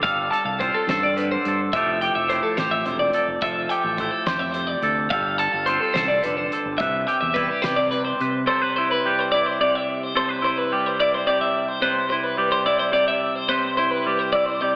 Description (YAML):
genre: math rock and midwest emo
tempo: 71 BPM (dotted quarters)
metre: 6/8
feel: straight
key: C major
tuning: A4 = 440 Hz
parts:
  - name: twangy electric guitar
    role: accompaniment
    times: 0.0-14.8 s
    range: C3 to B4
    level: -23 LUFS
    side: right 1 dB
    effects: lush chorus, slapback echo
  - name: twelve-string electric guitar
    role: arpeggios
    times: 0.0-14.8 s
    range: G4 to A5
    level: -22 LUFS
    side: left 1 dB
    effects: spring reverb
  - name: growling fingered electric bass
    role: bass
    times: 0.0-8.4 s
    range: E1 to C3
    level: -30 LUFS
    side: equal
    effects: overdrive
  - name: loose indie drum kit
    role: drums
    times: 0.0-8.3 s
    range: hi-hat, kick drum, snare drum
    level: -33 LUFS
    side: equal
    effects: none
room: wet concert hall reverb, RT60 1.9 s, small room ambience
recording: big arena sound, AM radio sound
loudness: -19 LUFS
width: side -24 dB against mid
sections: 0.0-8.5 A section; 8.5-14.8 B section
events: none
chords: 0.0 G9sus4; 1.7 Fmaj9; 5.1 G9sus4; 6.8 Cmaj7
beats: | 0.04 0.89 | 1.74 2.58 | 3.43 4.27 | 5.12 5.96 | 6.81 7.65 | 8.49 9.33 | 10.17 11.01 | 11.84 12.68 | 13.52 14.35